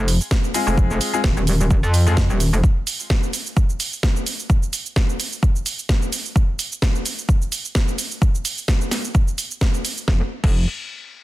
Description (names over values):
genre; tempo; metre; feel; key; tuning
bass house; 129 BPM; 4/4; swing 55% on 16ths; F minor; A4 = 440 Hz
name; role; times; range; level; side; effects
metallic wobble bass; bass; 0.0-2.6, 10.1-10.7 s; Eb1 to F2; -18 LUFS; equal; chorus, overdrive, sidechain pumping
house drum kit; drums; 0.1-10.5 s; crash cymbal, hi-hat, shaker, snare drum; -24 LUFS; right 2 dB; none
electronic kick drum; drums; 0.3-10.5 s; none; -18 LUFS; equal; none
clear concert grand piano; stabs; 0.5-2.1 s; Ab3 to Ab4; -24 LUFS; left 4 dB; sidechain pumping, tape echo
room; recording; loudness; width
little or no reverb; dense, heavily limited modern master; -18 LUFS; side -17 dB against mid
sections
0.0-10.1 A section; 10.1-11.2 B section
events
none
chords
0.0 Fm; 10.1 N.C.